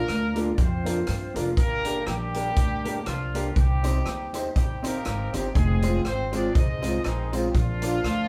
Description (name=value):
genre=ska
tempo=121 BPM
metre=4/4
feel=swing 56% on 8ths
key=C minor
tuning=A4 = 441 Hz
part: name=mellow horn section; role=melody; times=0.0-8.3 s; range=Eb3 to Eb5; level=-33 LUFS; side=equal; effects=none
part: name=mellow electric guitar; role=accompaniment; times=0.1-8.1 s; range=Ab3 to G4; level=-34 LUFS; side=equal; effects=none
part: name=upright bass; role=bass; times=0.1-8.3 s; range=F1 to G2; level=-30 LUFS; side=equal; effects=none
part: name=swinging big-band drum kit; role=drums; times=0.1-8.2 s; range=hi-hat, kick drum, rim click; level=-28 LUFS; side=equal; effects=none
part: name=warm upright piano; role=stabs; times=0.4-7.9 s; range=Bb3 to D5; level=-36 LUFS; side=equal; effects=none
part: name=tambourine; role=percussion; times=3.8-7.9 s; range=none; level=-51 LUFS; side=equal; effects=none
room=wet large studio reverb, RT60 0.8 s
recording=band playing live in one room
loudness=-25 LUFS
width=mono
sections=0.0-8.3 A section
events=none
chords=0.0 Bb; 1.6 Gm; 3.6 Cm; 5.6 Fm; 7.5 Bb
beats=0.08 0.58 1.08 | 1.57 2.07 2.57 3.07 | 3.56 4.06 4.56 5.05 | 5.55 6.05 6.55 7.05 | 7.54 8.04